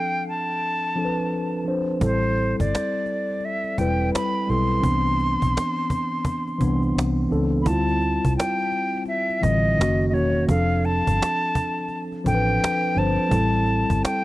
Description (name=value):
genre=lo-fi hip hop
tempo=85 BPM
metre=4/4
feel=swing 64% on 16ths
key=unclear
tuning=A4 = 440 Hz
part: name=breathy silver concert flute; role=melody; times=0.0-14.2 s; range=C5 to C6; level=-25 LUFS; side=equal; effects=low-pass filter, analog delay
part: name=mellow tine electric piano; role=accompaniment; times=0.0-14.2 s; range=D3 to C5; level=-24 LUFS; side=left 1 dB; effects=slow stereo tremolo, cassette tape, low-pass filter
part: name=vintage muted fingered electric bass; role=bass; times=2.0-14.0 s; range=E1 to D2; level=-24 LUFS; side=equal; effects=none
part: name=cajon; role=drums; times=2.0-14.2 s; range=none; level=-27 LUFS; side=equal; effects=none
room=small room reverb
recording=none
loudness=-20 LUFS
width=side -17 dB against mid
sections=0.0-7.7 A section; 7.7-14.2 B section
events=none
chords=0.0 F6; 2.0 Am7; 4.8 Cmaj9; 7.7 Dm11; 9.8 F#6; 10.5 F6; 13.3 Am7